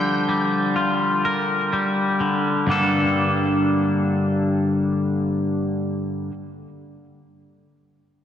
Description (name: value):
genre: rock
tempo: 63 BPM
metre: 4/4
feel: straight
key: G minor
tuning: A4 = 438 Hz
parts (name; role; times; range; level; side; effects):
- octave-fuzz lead guitar; melody; 0.0-1.7 s; G5; -31 LUFS; right 1 dB; distortion, tape echo
- twangy electric guitar; arpeggios; 0.0-6.3 s; G2 to Bb4; -19 LUFS; left 1 dB; wide subtle chorus, tape echo
room: wet lush hall reverb, RT60 3.0 s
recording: dreamy mix soaked in reverb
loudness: -19 LUFS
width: side -9 dB against mid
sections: 0.0-2.7 A section; 2.7-6.5 B section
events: none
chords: 0.0 Bb6; 2.7 Gmadd9